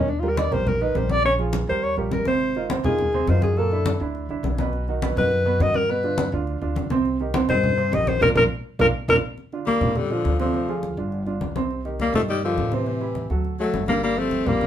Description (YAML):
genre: Afro-Cuban jazz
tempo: 206 BPM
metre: 4/4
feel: straight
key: Eb major, Bb major from 9.4 s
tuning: A4 = 438 Hz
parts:
  - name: mellow alto saxophone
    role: melody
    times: 0.0-14.7 s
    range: E3 to D#5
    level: -22 LUFS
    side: left 2 dB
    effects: none
  - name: warm baby grand piano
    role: accompaniment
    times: 0.0-14.7 s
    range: Bb2 to Eb5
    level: -27 LUFS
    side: right 5 dB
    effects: none
  - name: upright bass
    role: bass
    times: 0.0-14.7 s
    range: G1 to Bb2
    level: -26 LUFS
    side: equal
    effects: none
  - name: congas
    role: percussion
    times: 0.1-14.7 s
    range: none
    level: -27 LUFS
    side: left 1 dB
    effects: none
  - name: growling tenor saxophone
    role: second line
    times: 9.7-14.7 s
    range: C3 to A3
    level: -29 LUFS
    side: left 6 dB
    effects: none
room: moderate studio reverb, RT60 0.5 s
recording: band playing live in one room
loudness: -20 LUFS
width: side -10 dB against mid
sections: 0.1-9.4 A section; 9.4-14.7 B section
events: alto saxophone solo 0.0-9.4; band accent 8.2-9.4; drum fill 8.7-9.4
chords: 0.1 Eb; 1.2 Bbm7; 1.8 Eb; 2.4 Ab6; 3.6 Gb7alt; 4.7 B; 5.9 G7; 7.1 Cm7; 8.2 Bb; 9.4 Bb69; 10.5 Dm7b5; 11.1 G5; 11.7 Cmadd9; 12.9 Am7; 13.4 D; 14.0 Gm9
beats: | 0.08 0.38 0.67 0.96 | 1.25 1.54 1.83 2.12 | 2.41 2.70 2.99 3.28 | 3.57 3.86 4.15 4.44 | 4.73 5.02 5.31 5.60 | 5.89 6.18 6.47 6.77 | 7.06 7.35 7.64 7.93 | 8.22 8.51 8.80 9.09 | 9.38 9.67 9.96 10.25 | 10.54 10.83 11.12 11.41 | 11.70 11.99 12.29 12.58 | 12.87 13.16 13.45 13.74 | 14.03 14.32 14.61